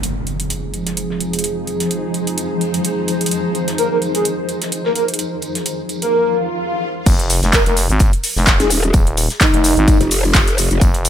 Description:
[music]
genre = bass house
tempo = 128 BPM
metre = 4/4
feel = swing 55% on 16ths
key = F minor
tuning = A4 = 440 Hz
[part]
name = dark analog pad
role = sustained chords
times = 0.2-6.1 s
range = F3 to Ab4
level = -24 LUFS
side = right 2 dB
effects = chorus, sidechain pumping
[part]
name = big-room dance drum kit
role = drums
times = 0.0-11.1 s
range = crash cymbal, handclaps, hi-hat, shaker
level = -19 LUFS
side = equal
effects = overdrive
[part]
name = modern studio drum kit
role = drums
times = 0.0-11.1 s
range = hi-hat, snare drum, tambourine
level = -32 LUFS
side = equal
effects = high-pass filter on hats, low-pass filter on hats, high-pass filter on snare, low-pass filter on snare, high-pass filter on perc, low-pass filter on perc, high-pass filter on room, low-pass filter on room
[part]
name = impact and swell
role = sound effects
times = 0.0-1.4, 6.3-7.1 s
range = none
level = -25 LUFS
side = equal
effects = none
[part]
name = granular cloud pad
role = texture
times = 0.6-6.1 s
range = F3 to C5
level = -23 LUFS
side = left 1 dB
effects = built-in reverb, sidechain pumping
[part]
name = breathy flute-like synth lead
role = melody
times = 3.8-10.1 s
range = Eb4 to Bb4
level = -19 LUFS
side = equal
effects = analog chorus, tape echo
[part]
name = growling FM bass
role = bass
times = 7.1-11.1 s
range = Eb1 to Ab1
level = -17 LUFS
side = equal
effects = sidechain pumping
[part]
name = electronic kick drum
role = drums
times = 7.1-10.9 s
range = none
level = -14 LUFS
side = equal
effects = none
[part]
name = growl bass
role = bass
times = 8.6-10.8 s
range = Eb1 to F1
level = -16 LUFS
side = equal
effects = chorus, overdrive, sidechain pumping
[sound]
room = light reverb, digital ambience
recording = none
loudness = -14 LUFS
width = side -10 dB against mid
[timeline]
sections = 0.0-7.1 A section; 7.1-11.1 B section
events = impact 0.0-1.4; swell 6.3-7.1; drop 7.1-11.1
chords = 0.0 Fm; 7.1 N.C.

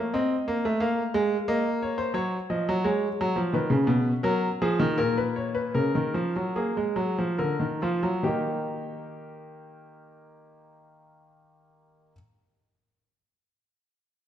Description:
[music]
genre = classical, baroque-style two-part invention for grand piano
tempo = 68-90 BPM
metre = 4/4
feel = straight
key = unclear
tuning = A4 = 439 Hz
[part]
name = warm concert grand piano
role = solo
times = 0.0-12.1 s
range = Bb2 to F5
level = -24 LUFS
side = equal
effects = none
[sound]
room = wet recital hall reverb, RT60 1.7 s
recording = none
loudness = -24 LUFS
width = side -10 dB against mid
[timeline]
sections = 0.0-8.2 A section; 8.2-11.7 B section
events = slowing down 0.8-8.2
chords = 0.0 F (rootless); 0.8 Bbm; 2.2 Gb5; 3.5 Abm; 5.0 Ebm/Bb; 6.6 Bb7; 8.2 Eb

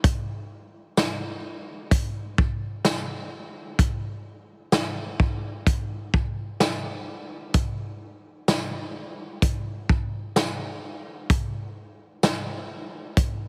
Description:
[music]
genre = dream pop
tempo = 64 BPM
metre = 4/4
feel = straight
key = none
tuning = none
[part]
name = vintage drum kit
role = drums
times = 0.0-13.4 s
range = hi-hat, kick drum, snare drum, tambourine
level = -26 LUFS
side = equal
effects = none
[sound]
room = moderate huge ambient reverb, RT60 4.7 s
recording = heavily compressed radio sound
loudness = -27 LUFS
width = mono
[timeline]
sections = 0.0-13.5 A section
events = none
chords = none

